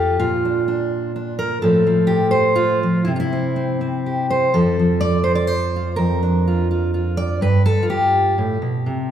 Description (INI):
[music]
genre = folk, solo fingerstyle acoustic guitar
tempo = 125 BPM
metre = 3/4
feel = straight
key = unclear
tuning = A4 = 440 Hz
[part]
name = fingerpicked steel-string acoustic guitar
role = solo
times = 0.0-9.1 s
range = F2 to D5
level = -16 LUFS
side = equal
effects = none
[sound]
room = wet concert hall reverb, RT60 1.9 s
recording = recorded in a church or concert hall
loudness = -16 LUFS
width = side -9 dB against mid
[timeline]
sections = 0.0-9.1 A section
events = none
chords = 0.2 Bb; 1.6 F/A; 3.1 C; 4.5 N.C.; 6.0 Bb/F; 7.4 G